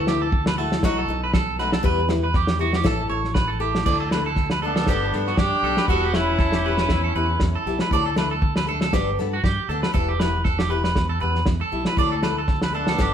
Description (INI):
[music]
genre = highlife guitar band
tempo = 118 BPM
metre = 4/4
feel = swing 55% on 16ths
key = D major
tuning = A4 = 440 Hz
[part]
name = electric guitar at the edge of break-up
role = arpeggios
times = 0.0-13.1 s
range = F#4 to D5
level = -25 LUFS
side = right 4 dB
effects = spring reverb
[part]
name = fingered electric bass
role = bass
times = 0.0-13.1 s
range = E1 to G2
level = -26 LUFS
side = equal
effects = none
[part]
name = picked old ladder-braced acoustic guitar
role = accompaniment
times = 0.1-13.1 s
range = F#3 to A4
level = -28 LUFS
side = left 6 dB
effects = none
[part]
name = warm soul drum kit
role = drums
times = 0.1-13.1 s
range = crash cymbal, kick drum, snare drum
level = -23 LUFS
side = equal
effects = none
[part]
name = warm horn section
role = melody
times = 4.6-7.7, 12.7-13.1 s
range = B3 to G4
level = -24 LUFS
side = equal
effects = none
[sound]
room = moderate studio reverb, RT60 0.9 s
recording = band playing live in one room, lossy compression artefacts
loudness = -19 LUFS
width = side -9 dB against mid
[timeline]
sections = 0.0-3.9 A section; 3.9-13.1 B section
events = none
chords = 0.0 Dadd9; 0.8 B7; 1.8 Em; 2.9 A; 3.9 D5; 4.9 Gadd9; 5.9 Em; 7.9 D; 8.9 Gadd9; 9.9 Em; 12.0 D